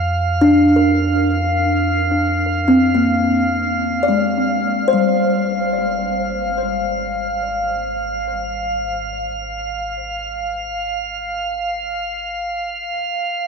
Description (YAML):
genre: ambient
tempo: free time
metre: none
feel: none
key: Ab lydian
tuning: A4 = 441 Hz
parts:
  - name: deep rumbling drone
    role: bass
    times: 0.0-13.5 s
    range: Ab1 to F2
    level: -26 LUFS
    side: equal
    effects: built-in reverb
  - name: drifting glass-harmonics texture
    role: texture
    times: 0.0-13.5 s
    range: F5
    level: -21 LUFS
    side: right 1 dB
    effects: chorus, built-in reverb
  - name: kalimba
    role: arpeggios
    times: 0.4-10.6 s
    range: G3 to D5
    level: -17 LUFS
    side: left 1 dB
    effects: tape echo
room: wet huge ambient reverb, RT60 8.0 s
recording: dark, warm production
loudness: -16 LUFS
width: side -5 dB against mid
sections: 0.0-13.5 A section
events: fade-out on synth drone 0.0-13.5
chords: 0.0 F5; 4.6 Ab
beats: free time